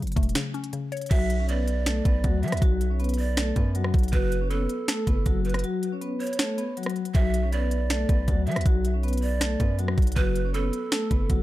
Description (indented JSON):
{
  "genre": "hip hop, trap",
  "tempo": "159 BPM",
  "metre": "4/4",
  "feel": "half-time",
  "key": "B minor",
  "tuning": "A4 = 440 Hz",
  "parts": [
    { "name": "mallet-like synth pluck", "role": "accompaniment", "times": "0.0-1.1 s", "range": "C#3 to C#5", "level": "-32 LUFS", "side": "left 5 dB", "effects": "chorus, low-pass filter" },
    { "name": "distorted 808-style bass", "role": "bass", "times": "0.0-11.4 s", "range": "E1 to F#3", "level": "-26 LUFS", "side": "equal", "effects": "distortion" },
    { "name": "trap drum kit", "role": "drums", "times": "0.0-11.4 s", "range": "crash cymbal, finger snaps, hi-hat, kick drum, rim click, snare drum", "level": "-25 LUFS", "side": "equal", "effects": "none" },
    { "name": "vibraphone with medium mallets", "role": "melody", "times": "1.1-11.4 s", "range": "F#3 to C#5", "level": "-29 LUFS", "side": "left 3 dB", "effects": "low-pass filter, tape echo" },
    { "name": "breathy mellow large pan pipes", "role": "second line", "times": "1.1-11.4 s", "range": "A4 to E5", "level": "-33 LUFS", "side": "right 5 dB", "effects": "tape echo" }
  ],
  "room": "digital ambience",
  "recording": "dark, warm production",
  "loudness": "-22 LUFS",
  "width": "side -16 dB against mid",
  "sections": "0.0-1.1 A section; 1.1-11.4 B section",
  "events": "break 0.4-1.1, 5.6-7.1",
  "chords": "0.0 F#m; 1.1 Bm7; 4.1 F#m; 7.1 Bm7; 10.2 F#m",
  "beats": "0.35 0.73 | 1.11 1.49 1.86 2.24 | 2.62 3.00 3.37 3.75 | 4.13 4.50 4.88 5.26 | 5.64 6.01 6.39 6.77 | 7.15 7.52 7.90 8.28 | 8.66 9.03 9.41 9.79 | 10.16 10.54 10.92 11.30"
}